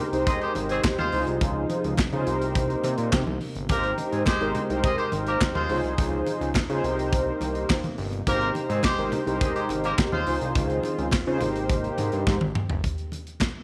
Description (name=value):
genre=early-eighties boogie funk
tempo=105 BPM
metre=4/4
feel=straight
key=Ab major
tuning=A4 = 438 Hz
part: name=mellow synth brass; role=accompaniment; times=0.0-12.3 s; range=Eb4 to C5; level=-30 LUFS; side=equal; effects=chorus
part: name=warm analog pad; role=sustained chords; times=0.0-12.8 s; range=C3 to G4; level=-38 LUFS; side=equal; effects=chorus
part: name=fat analog bass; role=bass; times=0.1-12.8 s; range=G1 to Db3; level=-32 LUFS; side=equal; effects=none
part: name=modern studio drum kit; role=drums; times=0.1-13.5 s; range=handclaps, hi-hat, kick drum, snare drum, toms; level=-30 LUFS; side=equal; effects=none
part: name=clear horn section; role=second line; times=0.3-10.4 s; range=Eb3 to Eb5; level=-31 LUFS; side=equal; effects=none
part: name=congas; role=percussion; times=0.3-13.5 s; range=none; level=-38 LUFS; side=equal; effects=none
room=moderate plate reverb, RT60 2.1 s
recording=none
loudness=-25 LUFS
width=mono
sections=0.0-12.8 A section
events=drum fill 12.3-12.8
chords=0.0 Abmaj7; 1.1 Dbmaj9; 2.3 Cm7; 3.7 Abmaj7; 5.7 Dbmaj9; 6.8 Cm7; 8.3 Abmaj7; 10.3 Dbmaj9; 11.4 Abmaj9; 12.8 N.C.